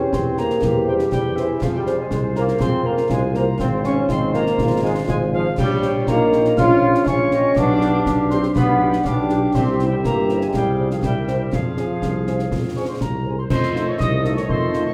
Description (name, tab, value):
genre	military-style march for wind band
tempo	121 BPM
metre	2/4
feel	straight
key	F minor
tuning	A4 = 441 Hz
part	warm euphonium	second line	0.0-13.2 s	B3 to Ab4	-28 LUFS	equal	none
part	warm woodwind section	second line	0.0-14.9 s	F4 to F5	-33 LUFS	equal	none
part	clear trombone section	sustained chords	0.0-14.9 s	Eb3 to F4	-24 LUFS	equal	none
part	mellow tuba	bass	0.0-14.9 s	G1 to F2	-26 LUFS	equal	none
part	mellow piccolo	second line	0.1-14.9 s	E5 to F6	-33 LUFS	equal	none
part	concert snare drum, concert bass drum and clash cymbals	drums	0.1-14.9 s	none	-27 LUFS	equal	none
part	dark trumpet section	melody	0.4-14.9 s	Bb4 to Ab5	-36 LUFS	equal	none
part	warm French horn section	accompaniment	0.4-14.8 s	A3 to Db5	-33 LUFS	equal	none
room	wet large studio reverb, RT60 1.4 s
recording	heard from further back in the room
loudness	-19 LUFS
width	mono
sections	0.0-13.5 A section; 13.5-14.9 B section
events	none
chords	0.0 C7/E; 1.6 Fm; 3.6 Fm/Ab; 5.6 Gm7b5/Bb; 7.6 G7/B; 9.5 C; 10.5 Fm/C; 11.0 C7; 11.5 Fm; 13.5 F7